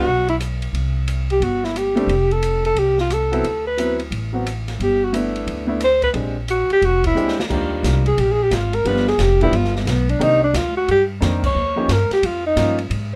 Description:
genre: jazz, small-group swing and bop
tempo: 178 BPM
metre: 4/4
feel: swing 64% on 8ths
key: Eb major from 7.5 s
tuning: A4 = 439 Hz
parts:
  - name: breathy alto saxophone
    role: melody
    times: 0.0-12.8 s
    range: Ab3 to Db5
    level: -20 LUFS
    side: equal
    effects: none
  - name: warm baby grand piano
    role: accompaniment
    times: 0.0-12.8 s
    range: Eb3 to Bb4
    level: -25 LUFS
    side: equal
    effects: none
  - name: upright bass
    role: bass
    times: 0.1-13.2 s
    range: F1 to Ab2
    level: -24 LUFS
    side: equal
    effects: none
  - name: open jazz drum kit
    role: drums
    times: 0.3-13.0 s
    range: crash cymbal, hi-hat, kick drum, ride cymbal, rim click, snare drum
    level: -31 LUFS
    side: equal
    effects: none
room: light reverb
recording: none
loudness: -19 LUFS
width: mono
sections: 0.0-7.5 A section; 7.5-13.2 B section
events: band accent 7.0, 11.4; drum fill 7.2-7.5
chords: 0.0 Esus2 (rootless); 0.7 C5; 2.1 F; 3.4 D13; 4.8 G69; 6.1 Bb13; 7.5 Ebmaj9; 8.8 G7; 10.2 Cm9; 11.6 Eb7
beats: 0.06 0.40 | 0.74 1.08 1.41 1.75 | 2.09 2.43 2.77 3.10 | 3.44 3.78 4.12 4.46 | 4.79 5.13 5.47 5.81 | 6.14 6.48 6.82 7.16 | 7.50 7.83 8.17 8.51 | 8.85 9.19 9.53 9.86 | 10.20 10.54 10.88 11.22 | 11.55 11.89 12.23 12.57 | 12.91

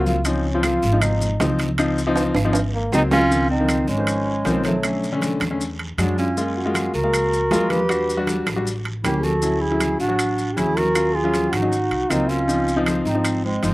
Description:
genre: Afro-Cuban jazz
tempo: 157 BPM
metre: 4/4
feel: straight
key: Db major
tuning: A4 = 437 Hz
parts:
  - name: warm trombone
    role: melody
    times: 0.0-13.7 s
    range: A3 to Cb5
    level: -23 LUFS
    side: equal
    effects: slapback echo
  - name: clear grand piano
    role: accompaniment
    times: 0.0-13.7 s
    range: D3 to F5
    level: -23 LUFS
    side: left 2 dB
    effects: slapback echo
  - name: upright bass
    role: bass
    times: 0.0-13.7 s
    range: G1 to F#2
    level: -25 LUFS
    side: equal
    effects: none
  - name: congas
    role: percussion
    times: 0.1-13.7 s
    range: none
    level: -31 LUFS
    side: right 1 dB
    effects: none
  - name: guiro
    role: percussion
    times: 0.1-13.7 s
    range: none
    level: -39 LUFS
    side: right 2 dB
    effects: none
  - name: maracas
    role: percussion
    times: 0.1-13.7 s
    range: none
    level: -34 LUFS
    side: left 2 dB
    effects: none
  - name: timbales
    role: percussion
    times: 0.2-13.7 s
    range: none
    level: -26 LUFS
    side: right 3 dB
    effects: none
  - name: claves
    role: percussion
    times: 0.6-13.4 s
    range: none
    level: -34 LUFS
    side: right 2 dB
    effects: none
  - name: clear clarinet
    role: second line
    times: 2.9-13.7 s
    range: Gb3 to G4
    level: -24 LUFS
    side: right 2 dB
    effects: none
room: little or no reverb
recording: recorded outdoors, with no room sound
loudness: -18 LUFS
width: side -19 dB against mid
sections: 0.0-3.3 A section; 3.3-13.7 B section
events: trombone solo 0.0-3.3; drum fill 2.2-3.3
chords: 0.3 Dbmaj9; 2.5 Ab7; 3.3 Dbmaj9; 4.8 Cbm7; 5.6 E9; 6.4 Gbmaj7; 7.9 Em9; 8.7 A7b9; 9.4 Dmaj9; 11.0 Ebm9; 11.7 Ab13; 12.5 Dbmaj9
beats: | 0.25 0.63 1.02 1.40 | 1.78 2.16 2.54 2.93 | 3.31 3.69 4.08 4.46 | 4.84 5.22 5.61 5.99 | 6.37 6.75 7.13 7.52 | 7.90 8.28 8.66 9.05 | 9.43 9.81 10.19 10.58 | 10.96 11.34 11.72 12.11 | 12.49 12.87 13.25 13.63

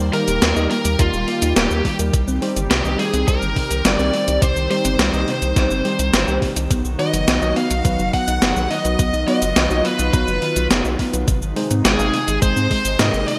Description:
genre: synthwave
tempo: 105 BPM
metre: 4/4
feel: straight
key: unclear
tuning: A4 = 440 Hz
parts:
  - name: lush unison pad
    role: sustained chords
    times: 0.0-13.4 s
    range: C3 to G4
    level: -29 LUFS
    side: equal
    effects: chorus, sidechain pumping
  - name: thumb-piano-like synth pluck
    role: arpeggios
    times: 0.0-13.4 s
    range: C3 to G4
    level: -28 LUFS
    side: equal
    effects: chorus, digital delay
  - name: round analog bass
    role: bass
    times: 0.0-13.2 s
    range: Eb1 to Ab2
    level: -25 LUFS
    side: equal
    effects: none
  - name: downlifter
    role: sound effects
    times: 0.0-2.1 s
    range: none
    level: barely audible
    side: none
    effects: none
  - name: biting lead guitar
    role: melody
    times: 0.1-13.4 s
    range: F4 to F#5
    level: -25 LUFS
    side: equal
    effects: overdrive, digital delay
  - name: string machine, violins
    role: second line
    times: 0.1-13.4 s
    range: F4 to F#5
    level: -34 LUFS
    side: equal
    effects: none
  - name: tine electric piano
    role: stabs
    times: 0.1-13.2 s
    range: F#3 to F5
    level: -30 LUFS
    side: equal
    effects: vintage 12-bit sampler grit
  - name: gated 80s digital drum machine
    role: drums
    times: 0.1-13.4 s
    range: cabasa, hi-hat, snare drum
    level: -23 LUFS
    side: equal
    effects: gated reverb, gated reverb snare, overdrive
  - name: electronic kick drum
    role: drums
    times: 1.0-12.8 s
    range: none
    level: -22 LUFS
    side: equal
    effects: overdrive
room: moderate plate reverb, RT60 2.2 s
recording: bright 1980s-style digital production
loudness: -18 LUFS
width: mono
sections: 0.0-13.4 A section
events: none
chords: 0.0 Eb; 2.1 Cm; 6.7 B; 11.3 Ab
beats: 0.42 0.99 1.56 | 2.13 2.71 3.28 3.85 | 4.42 4.99 5.56 6.13 | 6.71 7.28 7.85 8.42 | 8.99 9.56 10.13 10.71 | 11.28 11.85 12.42 12.99

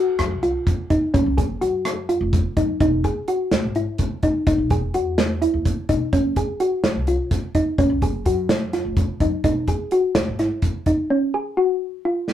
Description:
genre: progressive instrumental, band music in an uneven meter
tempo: 253 BPM (eighths)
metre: 7/8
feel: straight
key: unclear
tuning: A4 = 440 Hz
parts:
  - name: thumb-piano-like synth pluck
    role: arpeggios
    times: 0.0-12.3 s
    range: Db4 to Ab4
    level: -21 LUFS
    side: equal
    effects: chorus
  - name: upright bass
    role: bass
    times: 0.2-10.5 s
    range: E1 to Gb2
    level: -26 LUFS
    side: equal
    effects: none
  - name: modern studio drum kit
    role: drums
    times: 0.2-12.3 s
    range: hi-hat, kick drum, rim click, snare drum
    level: -22 LUFS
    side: equal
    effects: none
room: moderate small room reverb, RT60 0.5 s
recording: rough rehearsal-room recording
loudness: -18 LUFS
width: side -11 dB against mid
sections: 0.0-12.3 A section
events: none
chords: 0.0 N.C.; 2.8 Emaj7; 6.1 Gbsus2; 9.4 Emaj7; 11.1 Gb5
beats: 0.19 0.43 0.67 0.90 | 1.14 1.38 1.62 1.85 2.09 2.33 2.57 | 2.81 3.04 3.28 3.52 3.75 3.99 4.23 | 4.47 4.70 4.94 5.18 5.42 5.65 5.89 | 6.13 6.36 6.60 6.84 7.07 7.31 7.55 | 7.79 8.02 8.26 8.50 8.73 8.97 9.21 | 9.44 9.68 9.92 10.15 10.39 10.63 10.86 | 11.10 11.34 11.57 11.81 12.04 12.28

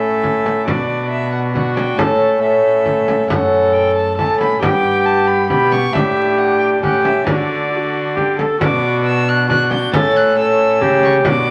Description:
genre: classical, renaissance-style consort dance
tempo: 136 BPM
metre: 3/4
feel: straight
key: unclear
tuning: A4 = 440 Hz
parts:
  - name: warm violin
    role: melody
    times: 0.0-11.5 s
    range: D5 to A6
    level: -24 LUFS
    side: equal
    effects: none
  - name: warm viola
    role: second line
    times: 0.0-11.5 s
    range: F#4 to A4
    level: -20 LUFS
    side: equal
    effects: none
  - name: Celtic harp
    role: accompaniment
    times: 0.0-11.5 s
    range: F#2 to D5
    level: -22 LUFS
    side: equal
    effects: none
  - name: warm bassoon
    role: accompaniment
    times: 0.0-11.5 s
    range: B3 to D4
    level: -26 LUFS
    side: equal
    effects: none
  - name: rich cello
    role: bass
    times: 0.0-11.5 s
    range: F#2 to D3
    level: -25 LUFS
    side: equal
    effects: none
  - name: frame drum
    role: percussion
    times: 0.2-11.5 s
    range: none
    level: -23 LUFS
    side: equal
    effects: none
room: wet stone room reverb, RT60 1.0 s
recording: vinyl crackle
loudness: -15 LUFS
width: mono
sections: 0.0-8.6 A section; 8.6-11.5 A section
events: none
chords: 0.0 A; 0.7 Bm; 2.0 A; 3.3 F#m; 4.6 G; 5.9 A7sus4; 6.8 A7; 7.3 D; 8.6 Bm; 9.9 A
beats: 0.23 | 0.67 1.11 1.55 | 1.99 2.42 2.86 | 3.30 3.74 4.18 | 4.62 5.05 5.49 | 5.93 6.38 6.82 | 7.27 7.72 8.16 | 8.61 9.05 9.49 | 9.94 10.38 10.82 | 11.26

